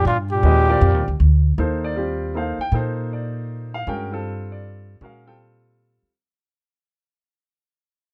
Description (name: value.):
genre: jazz.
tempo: 157 BPM.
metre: 3/4.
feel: swing 64% on 8ths.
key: unclear.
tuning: A4 = 442 Hz.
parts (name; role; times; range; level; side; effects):
trumpet with bucket mute; melody; 0.0-1.2 s; F4 to G4; -22 LUFS; equal; none.
warm bass clarinet; second line; 0.0-1.2 s; Bb2; -27 LUFS; equal; none.
upright bass; bass; 0.0-6.1 s; D2 to Bb2; -22 LUFS; equal; none.
warm baby grand piano; accompaniment; 0.4-6.1 s; G3 to G5; -28 LUFS; equal; none.
room: little or no reverb.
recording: close, detailed microphones.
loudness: -20 LUFS.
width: mono.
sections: 0.0-1.6 A section; 1.6-6.2 B section.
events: fade-out 1.6-6.2.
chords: 0.0 Ebmaj9.